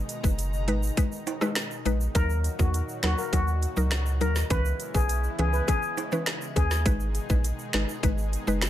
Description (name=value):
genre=dancehall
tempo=102 BPM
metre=4/4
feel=straight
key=unclear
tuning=A4 = 440 Hz
part: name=lush unison pad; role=sustained chords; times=0.0-8.7 s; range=Bb2 to Bb5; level=-38 LUFS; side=equal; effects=chorus, sidechain pumping
part: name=round analog bass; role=bass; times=0.0-8.7 s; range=Gb1 to Fb2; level=-26 LUFS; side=equal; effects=none
part: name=island pop drum kit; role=drums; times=0.1-8.7 s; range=finger snaps, hi-hat, kick drum, rim click, snare drum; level=-27 LUFS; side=equal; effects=none
part: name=egg shaker and timbales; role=percussion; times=0.1-8.7 s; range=none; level=-38 LUFS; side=right 7 dB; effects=none
part: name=mallet-like synth pluck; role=accompaniment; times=0.2-8.7 s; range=Fb3 to Cb5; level=-31 LUFS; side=left 2 dB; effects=chorus, sidechain pumping
part: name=steel pan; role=melody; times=2.2-6.7 s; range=Gb4 to Cb5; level=-32 LUFS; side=left 3 dB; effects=ping-pong delay
room=little or no reverb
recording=none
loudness=-24 LUFS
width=side -12 dB against mid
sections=0.0-8.7 A section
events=none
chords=0.0 Abm; 2.2 Ebm; 4.5 Dbm7; 6.9 Abm